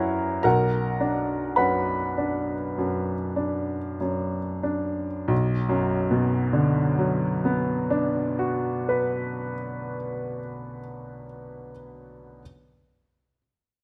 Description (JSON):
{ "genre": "classical, romantic character piece for solo piano", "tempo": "45-55 BPM", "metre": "4/4", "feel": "rubato", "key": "B minor", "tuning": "A4 = 440 Hz", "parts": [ { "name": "bright baby grand piano", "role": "solo", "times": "0.0-12.4 s", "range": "B1 to B5", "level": "-26 LUFS", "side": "equal", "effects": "none" } ], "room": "wet recital hall reverb, RT60 1.4 s", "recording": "none", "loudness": "-26 LUFS", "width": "mono", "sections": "0.0-5.3 A section; 5.3-10.2 B section", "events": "slowing down 0.0-5.3", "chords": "0.4 Bm", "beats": "| 0.44 1.59 2.77 4.01 | 5.30 6.56 7.79 9.04" }